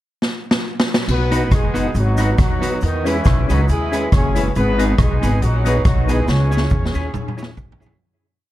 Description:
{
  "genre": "ska",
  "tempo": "138 BPM",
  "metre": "4/4",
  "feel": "swing 55% on 8ths",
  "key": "B major",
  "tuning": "A4 = 440 Hz",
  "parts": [
    { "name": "street-band drum kit", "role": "drums", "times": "0.2-8.0 s", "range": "crash cymbal, hi-hat, kick drum, rim click, snare drum, toms", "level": "-19 LUFS", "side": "equal", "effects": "none" },
    { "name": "warm horn section", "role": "melody", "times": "1.1-7.5 s", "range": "D#3 to C#5", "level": "-23 LUFS", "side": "equal", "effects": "analog delay" },
    { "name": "upright bass", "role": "bass", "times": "1.1-7.9 s", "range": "F#1 to E2", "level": "-18 LUFS", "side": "equal", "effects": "none" },
    { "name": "cabasa", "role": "percussion", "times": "1.1-7.9 s", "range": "none", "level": "-42 LUFS", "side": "right 5 dB", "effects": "none" },
    { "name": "electric guitar at the edge of break-up", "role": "accompaniment", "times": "1.3-8.0 s", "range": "G#3 to C#5", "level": "-25 LUFS", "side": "right 2 dB", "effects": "analog delay" },
    { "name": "percussive tonewheel organ", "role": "stabs", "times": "1.3-7.9 s", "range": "B3 to G#4", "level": "-26 LUFS", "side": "left 4 dB", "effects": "overdrive, chorus vibrato, slow rotary speaker, analog delay" }
  ],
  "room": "light reverb",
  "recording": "dark, warm production",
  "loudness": "-15 LUFS",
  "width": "side -14 dB against mid",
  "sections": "0.0-1.1 pickup bar; 1.1-8.0 head",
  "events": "drum fill 0.2-1.1, 6.3-8.0; fade-out 6.3-8.0",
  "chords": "0.0 N.C.; 1.1 B; 2.8 E6; 4.5 G#m; 6.3 C#m"
}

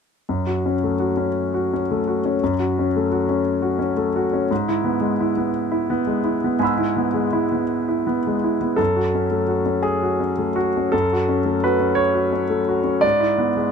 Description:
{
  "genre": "neoclassical minimalist piano",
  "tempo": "57 BPM (dotted quarters)",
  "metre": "6/8",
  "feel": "rubato",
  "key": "F# minor",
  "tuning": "A4 = 440 Hz",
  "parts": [
    { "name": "clear grand piano", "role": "solo", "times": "0.3-13.7 s", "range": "F#2 to E6", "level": "-18 LUFS", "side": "equal", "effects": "none" }
  ],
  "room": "light reverb",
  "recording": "none",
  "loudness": "-18 LUFS",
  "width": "side -6 dB against mid",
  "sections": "0.3-8.8 A section; 8.8-13.7 B section",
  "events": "none",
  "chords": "0.3 F#m; 4.5 E/G#; 8.8 F#m; 13.0 E/G#"
}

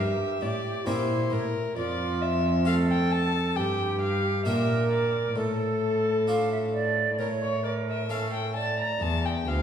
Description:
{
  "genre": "classical, baroque-style sonata movement with continuo",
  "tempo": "66 BPM",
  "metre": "4/4",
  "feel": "straight",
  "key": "D minor",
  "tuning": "A4 = 440 Hz",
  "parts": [
    { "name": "warm violin", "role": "melody", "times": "0.0-9.6 s", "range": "A4 to Bb5", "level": "-30 LUFS", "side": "left 4 dB", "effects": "none" },
    { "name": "bright silver concert flute", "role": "second line", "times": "0.0-9.0 s", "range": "E4 to F5", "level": "-30 LUFS", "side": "right 4 dB", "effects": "none" },
    { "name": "harpsichord", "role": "accompaniment", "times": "0.0-9.6 s", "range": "D2 to A4", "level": "-33 LUFS", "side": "left 1 dB", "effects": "none" },
    { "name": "rich cello", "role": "bass", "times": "0.0-9.6 s", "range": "D2 to Bb2", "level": "-29 LUFS", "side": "right 1 dB", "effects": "none" }
  ],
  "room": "wet recital hall reverb, RT60 1.5 s",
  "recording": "heard from further back in the room",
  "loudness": "-24 LUFS",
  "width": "side -8 dB against mid",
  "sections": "0.0-9.6 A section",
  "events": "none",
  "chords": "0.0 Edim/G; 1.8 Fmaj13; 3.6 Gm; 5.4 Dm/A; 7.2 A; 9.0 C (rootless)"
}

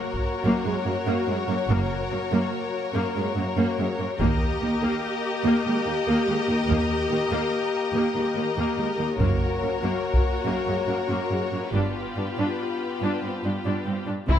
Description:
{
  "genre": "cinematic, epic orchestral film score",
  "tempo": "96 BPM (dotted quarters)",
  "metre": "12/8",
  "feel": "straight",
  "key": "unclear",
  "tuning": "A4 = 440 Hz",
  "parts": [
    { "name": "rich symphonic violin section", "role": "second line", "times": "0.0-14.4 s", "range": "C4 to Eb5", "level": "-30 LUFS", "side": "left 4 dB", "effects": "none" },
    { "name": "rich symphonic viola section", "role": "accompaniment", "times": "0.0-14.4 s", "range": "Ab3 to G4", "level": "-28 LUFS", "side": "equal", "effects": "none" },
    { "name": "mellow French horn section", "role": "sustained chords", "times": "0.0-14.4 s", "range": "Bb3 to G4", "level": "-31 LUFS", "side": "left 4 dB", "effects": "none" },
    { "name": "taiko ensemble", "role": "drums", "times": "0.1-0.3, 4.2-5.0, 9.2-10.3, 14.3-14.4 s", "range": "none", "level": "-25 LUFS", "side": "equal", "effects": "none" },
    { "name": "rich symphonic cello section", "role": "bass", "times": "0.4-14.4 s", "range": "Eb2 to C3", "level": "-28 LUFS", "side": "right 2 dB", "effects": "none" },
    { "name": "rich symphonic double bass section", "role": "bass", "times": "1.7-14.4 s", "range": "Gb1 to Eb2", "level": "-28 LUFS", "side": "right 2 dB", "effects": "none" },
    { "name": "rich symphonic violin section", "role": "melody", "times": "14.3-14.4 s", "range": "E4", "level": "-26 LUFS", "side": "left 8 dB", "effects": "none" }
  ],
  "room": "moderate scoring stage reverb, RT60 1.9 s",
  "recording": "none",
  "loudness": "-22 LUFS",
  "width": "side -9 dB against mid",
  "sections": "0.0-14.3 A section",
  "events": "build-up 0.0-14.3",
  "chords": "0.0 Gb; 4.2 Eb; 9.2 Gb; 11.7 G7"
}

